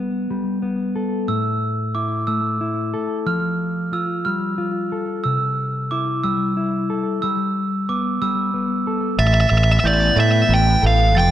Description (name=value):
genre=post-rock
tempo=61 BPM (dotted quarters)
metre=6/8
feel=straight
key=A minor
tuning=A4 = 439 Hz
part: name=mellow electric guitar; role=arpeggios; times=0.0-11.3 s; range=A2 to A4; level=-22 LUFS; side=left 2 dB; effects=slapback echo
part: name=glockenspiel with hard plastic mallets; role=arpeggios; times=1.3-11.3 s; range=D6 to A6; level=-24 LUFS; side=right 4 dB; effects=slapback echo
part: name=fuzz lead guitar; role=melody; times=9.2-11.3 s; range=D5 to G5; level=-17 LUFS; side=right 1 dB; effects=distortion, slapback echo
part: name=soft additive organ-like pad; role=sustained chords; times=9.6-11.3 s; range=E3 to G4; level=-28 LUFS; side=left 2 dB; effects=ensemble chorus, built-in reverb
part: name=growling fingered electric bass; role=bass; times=9.2-11.3 s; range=F1 to A2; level=-16 LUFS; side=right 1 dB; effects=overdrive
room=light reverb, digital ambience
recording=none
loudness=-18 LUFS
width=side -12 dB against mid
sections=0.0-9.2 A section; 9.2-11.3 B section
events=none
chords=0.0 Gadd9; 1.3 A5; 3.3 Fadd9; 5.3 C6; 7.2 Gadd9; 9.2 Asus2